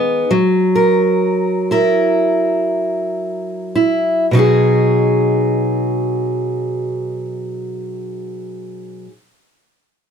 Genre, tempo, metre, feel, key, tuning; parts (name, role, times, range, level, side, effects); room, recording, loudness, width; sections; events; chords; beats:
folk; 52-68 BPM; 4/4; straight; B major; A4 = 440 Hz
fingerpicked steel-string acoustic guitar; accompaniment; 0.0-9.1 s; B2 to A#4; -15 LUFS; equal
moderate studio reverb, RT60 0.5 s; -14 LUFS; side -7 dB against mid
0.0-4.3 A section; 4.3-8.9 B section
slowing down 0.0-4.3
0.3 F#7; 4.3 B6
| 0.29 1.20 2.17 3.20 | 4.32 5.47 6.62 7.78